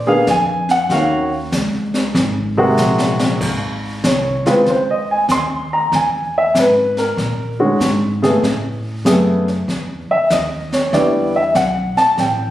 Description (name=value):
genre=jazz piano trio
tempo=96 BPM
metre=4/4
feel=swing 67% on 8ths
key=unclear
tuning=A4 = 438 Hz
part: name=warm baby grand piano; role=melody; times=0.0-12.5 s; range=C3 to C6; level=-15 LUFS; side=equal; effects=none
part: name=upright bass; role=bass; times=0.0-12.5 s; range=Ab1 to Bb2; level=-22 LUFS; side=equal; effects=none
part: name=jazz brush drum kit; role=drums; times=0.3-12.5 s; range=brushed snare drum, crash cymbal, hi-hat, kick drum, snare drum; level=-22 LUFS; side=equal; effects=none
room=light reverb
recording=recorded on a phone in the room, studio reverb, compression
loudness=-14 LUFS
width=side -13 dB against mid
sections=0.0-3.4 A section; 3.4-12.5 B section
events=drum fill 2.8-3.4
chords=0.0 Bb7b9; 0.9 Ebm7; 2.2 Ab9; 3.4 Dbmaj7(no3); 5.9 E; 8.4 A; 10.9 Em7